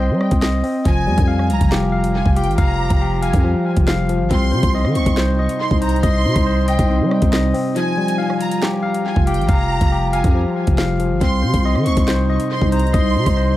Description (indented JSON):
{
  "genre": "hip hop, drill",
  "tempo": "139 BPM",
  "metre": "4/4",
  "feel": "half-time",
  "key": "F minor",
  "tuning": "A4 = 440 Hz",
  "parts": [
    { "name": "bright tine electric piano", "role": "arpeggios", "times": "0.0-13.6 s", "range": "F3 to F5", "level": "-20 LUFS", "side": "left 3 dB", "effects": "tape echo" },
    { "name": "growling 808-style bass", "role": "bass", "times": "0.0-13.6 s", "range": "F1 to G3", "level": "-19 LUFS", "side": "equal", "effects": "none" },
    { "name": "drill drum kit", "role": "drums", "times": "0.2-13.4 s", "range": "handclaps, hi-hat, kick drum, rim click, snare drum", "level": "-19 LUFS", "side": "equal", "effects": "none" },
    { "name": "warm symphonic violin section", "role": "second line", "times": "0.9-13.5 s", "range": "G5 to Db6", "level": "-26 LUFS", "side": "right 2 dB", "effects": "tape echo" },
    { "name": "warbly tape-like pad", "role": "sustained chords", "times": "1.9-13.6 s", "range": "C3 to F4", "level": "-26 LUFS", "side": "right 3 dB", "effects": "chorus, built-in reverb" }
  ],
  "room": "digital ambience",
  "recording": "echo-heavy mix, vinyl crackle",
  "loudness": "-15 LUFS",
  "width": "side -14 dB against mid",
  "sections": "0.9-13.6 A section",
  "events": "break 7.8-8.6",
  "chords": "0.0 Cm; 0.9 Fmadd9; 4.3 Cm; 7.8 Fmadd9; 11.2 Cm"
}